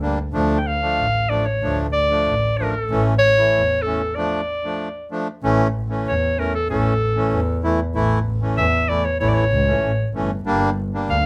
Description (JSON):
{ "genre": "klezmer", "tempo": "95 BPM", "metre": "2/4", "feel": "straight", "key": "unclear", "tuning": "A4 = 439 Hz", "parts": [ { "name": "bright clarinet", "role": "melody", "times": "0.0-11.3 s", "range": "A4 to G5", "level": "-22 LUFS", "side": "equal", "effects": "none" }, { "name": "accordion", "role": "accompaniment", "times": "0.0-11.2 s", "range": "E3 to E4", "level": "-25 LUFS", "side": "equal", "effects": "none" }, { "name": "rich double bass", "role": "bass", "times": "0.0-11.3 s", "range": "G1 to E2", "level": "-24 LUFS", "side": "equal", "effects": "none" } ], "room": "moderate small room reverb, RT60 0.5 s", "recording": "none", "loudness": "-20 LUFS", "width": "mono", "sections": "0.0-5.4 A section; 5.4-11.3 B section", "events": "break 4.2-5.4", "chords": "0.3 Dm; 2.9 A; 4.2 Dm; 5.4 A; 10.5 Gm" }